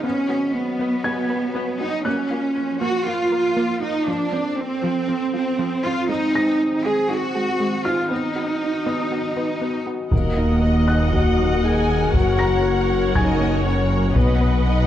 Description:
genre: cinematic, hybrid orchestral and electronic film score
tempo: 119 BPM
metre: 4/4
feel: straight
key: Eb minor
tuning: A4 = 441 Hz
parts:
  - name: rich symphonic viola section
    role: accompaniment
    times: 0.0-14.9 s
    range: F3 to Eb5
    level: -30 LUFS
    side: right 1 dB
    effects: none
  - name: warbly tape-like pad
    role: sustained chords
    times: 0.0-14.9 s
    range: Eb3 to D#5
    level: -29 LUFS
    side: left 2 dB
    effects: chorus, built-in reverb
  - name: thumb-piano-like synth pluck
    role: arpeggios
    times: 0.0-14.6 s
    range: Eb3 to B4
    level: -30 LUFS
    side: right 1 dB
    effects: chorus, tape echo
  - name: rich symphonic cello section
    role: bass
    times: 0.0-14.9 s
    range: Eb2 to Ab4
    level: -22 LUFS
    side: right 1 dB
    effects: none
  - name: felt-muted upright piano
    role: texture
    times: 0.0-14.9 s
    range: Ab5 to Bb6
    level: -31 LUFS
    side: left 2 dB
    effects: tape echo
  - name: rich studio violin section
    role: melody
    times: 10.1-14.9 s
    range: Gb5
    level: -32 LUFS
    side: left 3 dB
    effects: none
  - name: warm symphonic violin section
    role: second line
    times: 10.1-14.9 s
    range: Bb4 to Ab5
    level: -30 LUFS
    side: left 3 dB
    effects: none
  - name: warm French horn section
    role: sustained chords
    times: 10.1-14.9 s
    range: Bb3 to Ab4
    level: -23 LUFS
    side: left 5 dB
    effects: none
  - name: dark tuba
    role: bass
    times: 10.1-14.9 s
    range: Gb1 to Eb2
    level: -26 LUFS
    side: right 2 dB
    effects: none
  - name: pure sine sub bass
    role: bass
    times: 10.1-14.9 s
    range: Eb1 to B1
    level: -25 LUFS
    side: left 1 dB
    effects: none
  - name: rich symphonic double bass section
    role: bass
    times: 10.1-14.9 s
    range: Gb1 to Eb2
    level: -24 LUFS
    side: right 2 dB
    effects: none
  - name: taiko ensemble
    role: drums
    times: 10.1-14.6 s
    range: none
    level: -23 LUFS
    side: left 1 dB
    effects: none
room: light reverb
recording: worn, warbling old tape, cassette tape, warbly pitch drift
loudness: -18 LUFS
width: side -11 dB against mid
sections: 0.0-10.1 A section; 10.1-14.9 B section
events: none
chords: 0.0 B/F#; 2.1 Bbm/F; 4.1 F; 6.1 Ab/Eb; 8.1 B/D#; 10.1 Ebm; 12.1 Gb; 14.2 B

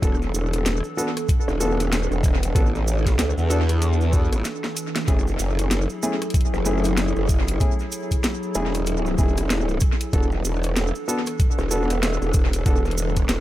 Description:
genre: glitch hop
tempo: 95 BPM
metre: 4/4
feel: swing 61% on 16ths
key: unclear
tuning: A4 = 435 Hz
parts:
  - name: warbly tape-like pad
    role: sustained chords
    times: 0.0-13.4 s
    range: E3 to A4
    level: -29 LUFS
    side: equal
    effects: chorus, built-in reverb, phaser, sidechain pumping
  - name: dark concert grand piano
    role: stabs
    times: 0.0-12.8 s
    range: A3 to A4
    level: -29 LUFS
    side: left 1 dB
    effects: vintage 12-bit sampler grit, sidechain pumping, tape echo
  - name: growl bass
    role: bass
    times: 0.0-13.4 s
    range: E1 to E2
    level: -22 LUFS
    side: equal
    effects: chorus
  - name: drum and bass drum kit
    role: drums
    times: 0.0-13.4 s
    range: hi-hat, rim click, snare drum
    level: -29 LUFS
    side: equal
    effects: overdrive, tape echo
  - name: electronic kick drum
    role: drums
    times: 0.0-13.3 s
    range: none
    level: -20 LUFS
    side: equal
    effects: none
  - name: cabasa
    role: percussion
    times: 0.0-13.4 s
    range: none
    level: -34 LUFS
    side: right 4 dB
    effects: tape echo
room: little or no reverb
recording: echo-heavy mix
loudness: -19 LUFS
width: side -14 dB against mid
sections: 0.0-13.4 A section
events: break 4.4-5.1; drum fill 4.4-5.1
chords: 0.0 E7sus4; 5.1 F#m9; 10.1 E7sus4

